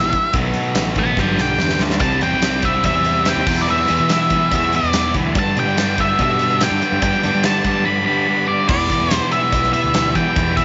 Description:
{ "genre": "classic rock", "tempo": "144 BPM", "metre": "4/4", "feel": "straight", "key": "E minor", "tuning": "A4 = 440 Hz", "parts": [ { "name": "octave-fuzz lead guitar", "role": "melody", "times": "0.0-10.6 s", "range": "D5 to B5", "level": "-21 LUFS", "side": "equal", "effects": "distortion, tape echo" }, { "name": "tonewheel organ", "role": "sustained chords", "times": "0.0-10.6 s", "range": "A3 to E5", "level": "-34 LUFS", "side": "equal", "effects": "none" }, { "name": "crunchy overdriven guitar", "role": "riff", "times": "0.0-10.6 s", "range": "E2 to C4", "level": "-25 LUFS", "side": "equal", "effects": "spring reverb" }, { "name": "distorted electric guitar", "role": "riff", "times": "0.0-10.6 s", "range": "G2 to E4", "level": "-28 LUFS", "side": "equal", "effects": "distortion" }, { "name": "growling fingered electric bass", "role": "bass", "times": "0.0-10.6 s", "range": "G1 to G3", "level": "-26 LUFS", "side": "equal", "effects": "overdrive" }, { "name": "huge arena drum kit", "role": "drums", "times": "0.1-10.6 s", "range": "crash cymbal, hi-hat, kick drum, snare drum, tambourine", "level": "-24 LUFS", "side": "equal", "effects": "none" }, { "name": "cowbell", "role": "percussion", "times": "2.0-10.5 s", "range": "none", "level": "-38 LUFS", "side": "equal", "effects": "none" } ], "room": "moderate echo chamber reverb, RT60 1.5 s", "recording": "nothing above 7.8 kHz", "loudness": "-17 LUFS", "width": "mono", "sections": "0.0-2.0 A section; 2.0-8.7 B section; 8.7-10.6 C section", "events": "lead electric guitar solo 0.0-2.0; drum fill 1.2-2.0", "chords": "0.3 B; 1.2 G7; 2.0 Cadd9; 3.5 Em; 5.4 G; 8.7 Em7", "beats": "| 0.34 0.76 1.17 1.59 | 2.01 2.43 2.85 3.27 | 3.69 4.10 4.52 4.94 | 5.36 5.77 6.19 6.61 | 7.03 7.44 7.86 8.28 | 8.70 9.11 9.53 9.95 | 10.36" }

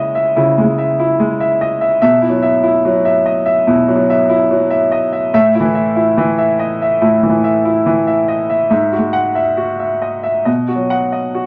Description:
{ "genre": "neoclassical minimalist piano", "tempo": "72 BPM", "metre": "4/4", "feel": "rubato", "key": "unclear", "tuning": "A4 = 440 Hz", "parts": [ { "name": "bright grand piano", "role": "solo", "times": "0.0-11.5 s", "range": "G#2 to F#5", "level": "-14 LUFS", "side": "equal", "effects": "none" } ], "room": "wet club ambience, RT60 0.5 s", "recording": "none", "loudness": "-14 LUFS", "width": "mono", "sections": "0.0-11.5 A section", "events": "none", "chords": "0.0 C#m; 2.0 Bsus4; 5.3 A5; 8.7 Eadd9/G#; 10.5 B", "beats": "0.36 1.19 | 2.01 2.84 3.68 4.51 | 5.34 6.18 7.02 7.87 | 8.71 9.59 10.47 11.35" }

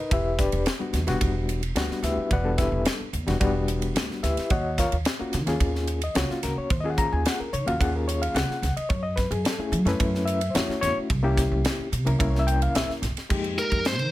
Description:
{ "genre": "electric jazz fusion", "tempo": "109 BPM", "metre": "4/4", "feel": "straight", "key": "unclear", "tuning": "A4 = 441 Hz", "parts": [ { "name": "overdriven reed electric piano", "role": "accompaniment", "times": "0.0-13.9 s", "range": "G3 to A#5", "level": "-27 LUFS", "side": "left 2 dB", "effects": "fast tremolo" }, { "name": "upright bass", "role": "bass", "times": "0.1-14.1 s", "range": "E1 to F#3", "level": "-27 LUFS", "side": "right 1 dB", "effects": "none" }, { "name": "crisp fusion drum kit", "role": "drums", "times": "0.1-14.1 s", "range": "crash cymbal, hi-hat, kick drum, ride cymbal, snare drum", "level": "-28 LUFS", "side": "equal", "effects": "none" }, { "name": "biting lead guitar", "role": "melody", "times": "13.6-14.1 s", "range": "Bb4 to C5", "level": "-25 LUFS", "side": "right 1 dB", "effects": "overdrive" } ], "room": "light reverb", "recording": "none", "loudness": "-22 LUFS", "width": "side -15 dB against mid", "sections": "0.0-13.3 A section", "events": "none", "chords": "0.1 Em9; 4.5 D#m9; 8.9 F#m9; 11.1 C7b9; 13.3 Fm11", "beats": "| 0.11 0.66 1.21 1.76 | 2.31 2.85 3.40 3.95 | 4.50 5.05 5.60 6.15 | 6.70 7.25 7.80 8.35 | 8.90 9.45 10.00 10.55 | 11.10 11.65 12.20 12.75 | 13.30 13.85" }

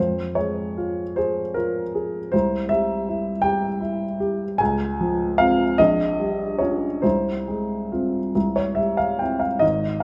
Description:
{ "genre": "classical, romantic nocturne for solo piano", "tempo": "45-55 BPM (dotted quarters)", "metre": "6/8", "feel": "rubato", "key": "F minor", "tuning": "A4 = 443 Hz", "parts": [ { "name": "warm upright piano", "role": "solo", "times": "0.0-10.0 s", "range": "Ab1 to Ab5", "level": "-23 LUFS", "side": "equal", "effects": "none" } ], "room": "moderate recital hall reverb, RT60 1.8 s", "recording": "none", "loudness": "-23 LUFS", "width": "mono", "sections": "0.0-10.0 A section", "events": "none", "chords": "0.0 Fm; 2.3 C; 4.6 Dbmaj7; 5.8 Gm7b5/Bb; 7.0 Fm/C; 8.3 C", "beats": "1.18 | 2.33 3.45 | 4.60 5.79 | 7.04 8.35 | 9.62" }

